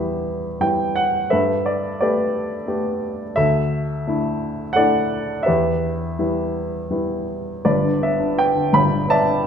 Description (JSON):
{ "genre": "classical, lyrical solo piano", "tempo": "85 BPM", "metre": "3/4", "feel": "rubato", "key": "E minor", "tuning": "A4 = 440 Hz", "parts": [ { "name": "warm baby grand piano", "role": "solo", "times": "0.0-9.5 s", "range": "G1 to B5", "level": "-18 LUFS", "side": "equal", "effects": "none" } ], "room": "moderate concert hall reverb, RT60 1.8 s", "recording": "minimal, uncompressed stereo recording", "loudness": "-18 LUFS", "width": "side -7 dB against mid", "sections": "0.0-7.7 A section; 7.7-9.5 B section", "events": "none", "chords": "0.0 Em; 1.3 Gadd9; 3.4 Dsus2; 5.5 Em; 7.7 G6" }